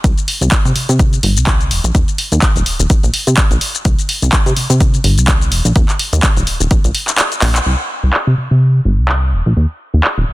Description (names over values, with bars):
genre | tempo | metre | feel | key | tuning
filtered disco house | 126 BPM | 4/4 | swing 56% on 16ths | unclear | A4 = 444 Hz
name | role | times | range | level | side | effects
plucky analog bass | bass | 0.0-10.3 s | Eb1 to C3 | -13 LUFS | equal | sidechain pumping, low-pass filter
electronic kick drum | drums | 0.0-6.8 s | none | -13 LUFS | equal | none
punchy analog drum machine | drums | 0.0-10.1 s | handclaps, hi-hat, shaker | -17 LUFS | equal | sidechain pumping on hats, low-pass filter on hats, low-pass filter on snare, sidechain pumping on perc, low-pass filter on perc
room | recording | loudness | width
digital ambience | dense, heavily limited modern master | -11 LUFS | side -18 dB against mid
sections
0.0-7.7 A section; 7.7-10.3 B section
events
kick drops out 7.2-7.7; drum fill 7.4; band accent 7.5; filter sweep on analog synth bass 7.7-10.3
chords
none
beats
| 0.04 0.52 0.99 1.47 | 1.95 2.42 2.90 3.38 | 3.85 4.33 4.80 5.28 | 5.76 6.23 6.71 7.18 | 7.66 8.14 8.61 9.09 | 9.57 10.04